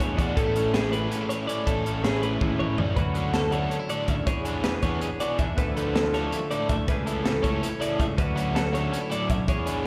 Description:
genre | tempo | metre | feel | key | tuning
math rock and midwest emo | 322 BPM (eighths) | 7/8 | straight | unclear | A4 = 440 Hz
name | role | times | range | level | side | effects
twelve-string electric guitar | accompaniment | 0.0-9.9 s | A2 to B4 | -34 LUFS | equal | slapback echo
twelve-string electric guitar | arpeggios | 0.0-9.9 s | G#4 to E5 | -32 LUFS | equal | analog delay, slapback echo
biting overdriven guitar | riff | 0.0-9.9 s | A2 to A4 | -33 LUFS | equal | slapback echo
fuzz fingered electric bass | bass | 0.0-9.9 s | A1 to E2 | -32 LUFS | equal | overdrive
crisp fusion drum kit | drums | 0.0-9.8 s | hi-hat, kick drum, snare drum, toms | -31 LUFS | equal | none
room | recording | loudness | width
moderate club reverb, RT60 0.6 s | live gig heard through the venue's PA, recital hall reverb | -26 LUFS | mono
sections
0.0-3.0 A section; 3.0-9.9 B section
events
drum fill 2.4-3.0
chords
0.4 Amaj7; 3.0 Dmaj9; 4.3 E7; 5.6 Dmadd9; 6.9 Amaj7/C#; 8.2 Dmaj9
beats
0.00 0.18 | 0.37 0.56 0.74 0.93 1.11 1.30 1.48 | 1.67 1.85 2.04 2.23 2.41 2.60 2.78 | 2.97 3.15 3.34 3.53 3.71 3.90 4.08 | 4.27 4.46 4.64 4.83 5.02 5.20 5.39 | 5.58 5.76 5.95 6.13 6.32 6.51 6.69 | 6.88 7.07 7.25 7.44 7.62 7.81 8.00 | 8.18 8.37 8.55 8.74 8.93 9.11 9.30 | 9.49 9.67 9.86

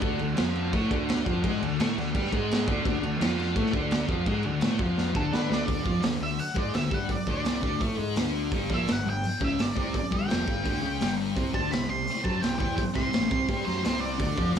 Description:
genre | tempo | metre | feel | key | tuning
garage rock duo or trio | 169 BPM | 4/4 | straight | D mixolydian | A4 = 443 Hz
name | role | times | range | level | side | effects
combo organ | sustained chords | 0.0-5.6, 11.3-14.6 s | C4 to C5 | -40 LUFS | right 2 dB | none
thick fuzz guitar | riff | 0.0-14.6 s | F2 to D5 | -29 LUFS | left 1 dB | distortion
fuzz fingered electric bass | bass | 0.0-14.6 s | F1 to D3 | -32 LUFS | equal | overdrive
raw garage drum kit | drums | 0.0-14.6 s | crash cymbal, hi-hat, kick drum, snare drum | -29 LUFS | equal | none
octave-fuzz lead guitar | melody | 5.2-14.5 s | A4 to C6 | -32 LUFS | right 2 dB | distortion
room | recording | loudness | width
little or no reverb | small room reverb | -25 LUFS | side -8 dB against mid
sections
0.0-5.7 A section; 5.7-14.6 B section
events
drum fill 5.0-5.7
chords
0.0 D; 5.7 D5; 8.5 G5; 11.4 C5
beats
| 0.03 0.38 0.73 1.09 | 1.44 1.79 2.15 2.50 | 2.85 3.21 3.56 3.92 | 4.27 4.62 4.98 5.33 | 5.68 6.04 6.39 6.75 | 7.10 7.46 7.81 8.17 | 8.52 8.88 9.23 9.59 | 9.94 10.30 10.65 11.01 | 11.37 11.72 12.08 12.43 | 12.79 13.14 13.50 13.86 | 14.21 14.57

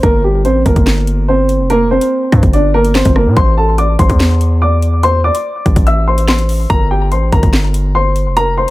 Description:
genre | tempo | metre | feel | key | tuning
hip hop, drill | 144 BPM | 4/4 | half-time | A phrygian | A4 = 440 Hz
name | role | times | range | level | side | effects
dark upright piano | melody | 0.0-8.7 s | G3 to E6 | -14 LUFS | equal | low-pass filter, ping-pong delay
distorted 808-style bass | bass | 0.0-8.7 s | F1 to Bb2 | -13 LUFS | equal | distortion
drill drum kit | drums | 0.0-8.7 s | handclaps, hi-hat, kick drum, rim click, snare drum | -13 LUFS | equal | none
room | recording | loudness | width
little or no reverb | none | -10 LUFS | side -18 dB against mid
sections
0.0-3.4 A section; 3.4-8.7 B section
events
none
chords
0.0 Gm; 3.4 Am; 6.7 Gm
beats
| 0.03 0.45 0.87 1.28 | 1.70 2.12 2.53 2.95 | 3.37 3.78 4.20 4.62 | 5.03 5.45 5.87 6.28 | 6.70 7.12 7.53 7.95 | 8.37

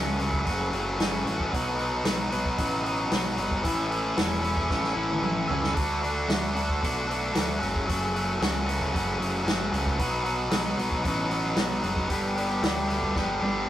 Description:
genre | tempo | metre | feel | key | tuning
indie rock | 114 BPM | 4/4 | straight | unclear | A4 = 440 Hz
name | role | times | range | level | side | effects
distorted electric guitar | riff | 0.0-13.7 s | F#2 to G4 | -26 LUFS | equal | overdrive
growling picked electric bass | bass | 0.0-13.7 s | E1 to D2 | -32 LUFS | equal | overdrive
vintage drum kit | drums | 0.2-13.5 s | hi-hat, kick drum, snare drum, toms | -30 LUFS | equal | none
room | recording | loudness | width
moderate small room reverb, RT60 0.6 s | rough rehearsal-room recording, warm saturation | -24 LUFS | side -12 dB against mid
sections
0.0-13.7 A section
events
drum fill 4.7-5.8, 13.2-13.7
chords
0.0 F#m; 1.5 B; 3.6 A; 5.8 D; 7.6 F#m; 10.0 B; 12.1 G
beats
0.47 1.00 | 1.53 2.06 2.58 3.11 | 3.64 4.17 4.70 5.23 | 5.75 6.28 6.81 7.34 | 7.87 8.40 8.93 9.46 | 9.99 10.52 11.05 11.58 | 12.11 12.63 13.16 13.69

